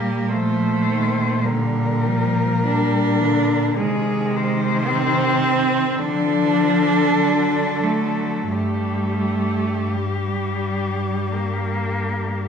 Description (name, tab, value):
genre	classical, lyrical piece for cello ensemble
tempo	42-55 BPM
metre	4/4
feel	rubato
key	G minor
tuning	A4 = 441 Hz
part	rich cello	melody	0.0-12.5 s	G4 to C5	-26 LUFS	left 4 dB	none
part	rich cello	second line	0.0-12.5 s	G3 to D4	-21 LUFS	right 2 dB	none
part	rich cello	accompaniment	0.0-12.5 s	D3 to Bb3	-26 LUFS	left 3 dB	none
part	rich cello	bass	0.0-12.5 s	G2 to D3	-24 LUFS	equal	none
room	wet recital hall reverb, RT60 1.3 s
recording	recorded in a church or concert hall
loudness	-18 LUFS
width	side -7 dB against mid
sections	0.0-12.5 A section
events	none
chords	0.0 Gm/Bb; 3.8 Ab/C; 6.0 Dm; 7.2 D; 8.5 Gm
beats	0.34 1.46 2.66 | 3.78 4.89 5.99 7.16 | 8.51 9.92 11.31